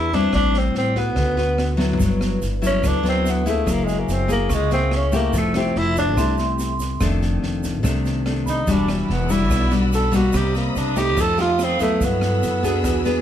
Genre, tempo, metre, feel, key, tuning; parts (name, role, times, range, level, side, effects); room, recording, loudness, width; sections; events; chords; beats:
bossa nova; 144 BPM; 4/4; straight; G major; A4 = 439 Hz
growling tenor saxophone; melody; 0.0-13.2 s; F#3 to A4; -22 LUFS; right 1 dB
nylon-string guitar; accompaniment; 0.0-13.2 s; F2 to B4; -22 LUFS; left 3 dB
upright bass; bass; 0.0-13.2 s; E1 to G2; -24 LUFS; equal
open jazz drum kit; drums; 0.1-13.1 s; kick drum, rim click, snare drum, toms; -28 LUFS; right 1 dB
egg shaker; percussion; 2.0-13.2 s; -38 LUFS; right 5 dB
vibraphone with soft mallets; accompaniment; 2.2-13.0 s; F#4 to C#6; -30 LUFS; right 8 dB
warm symphonic string section; sustained chords; 8.7-13.2 s; A4 to E6; -31 LUFS; left 2 dB
moderate studio reverb, RT60 0.7 s; -18 LUFS; side -10 dB against mid
0.0-2.0 A section; 2.0-13.2 B section
drum fill 1.8; tenor saxophone solo 2.0-13.2
0.3 Am7; 1.2 D69; 2.0 G6; 3.7 F#9; 5.3 Fmaj9; 7.0 F6; 8.7 Em9; 10.3 Cm7; 11.2 F9; 12.0 Gmaj13
| 0.33 0.75 1.16 1.58 | 2.00 2.41 2.83 3.25 | 3.66 4.08 4.50 4.92 | 5.33 5.75 6.17 6.58 | 7.00 7.42 7.84 8.25 | 8.67 9.09 9.51 9.92 | 10.34 10.76 11.17 11.59 | 12.01 12.43 12.84